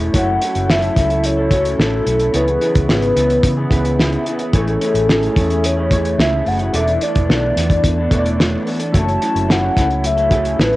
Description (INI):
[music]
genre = indie pop, bedroom pop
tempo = 109 BPM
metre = 4/4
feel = straight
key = unclear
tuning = A4 = 440 Hz
[part]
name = electric guitar through a small old amp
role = accompaniment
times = 0.0-10.8 s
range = A2 to A4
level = -24 LUFS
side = equal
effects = wide subtle chorus, warbly pitch drift, cassette tape
[part]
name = warm analog keys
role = accompaniment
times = 0.0-10.8 s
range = A3 to G#5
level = -26 LUFS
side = right 1 dB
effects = chorus, cassette tape
[part]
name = vintage muted fingered electric bass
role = bass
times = 0.0-10.8 s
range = E1 to C#3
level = -20 LUFS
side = equal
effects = none
[part]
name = phased analog pad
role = sustained chords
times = 0.1-10.8 s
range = C#3 to A4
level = -24 LUFS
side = equal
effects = phaser, chorus, cassette tape
[part]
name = cloth-damped thuddy drum kit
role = drums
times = 0.1-10.8 s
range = hi-hat, kick drum, snare drum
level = -18 LUFS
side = equal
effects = cassette tape
[part]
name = hollow clarinet-like synth lead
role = melody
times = 0.2-10.8 s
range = G#4 to A5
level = -19 LUFS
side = left 1 dB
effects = analog chorus, cassette tape
[sound]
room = light reverb, studio reverb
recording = home recording on cassette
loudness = -14 LUFS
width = side -18 dB against mid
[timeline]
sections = 0.1-10.8 A section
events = none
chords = 0.1 F#m7; 2.3 C#m7; 4.5 Amaj7; 6.7 E7sus4; 8.9 F#m7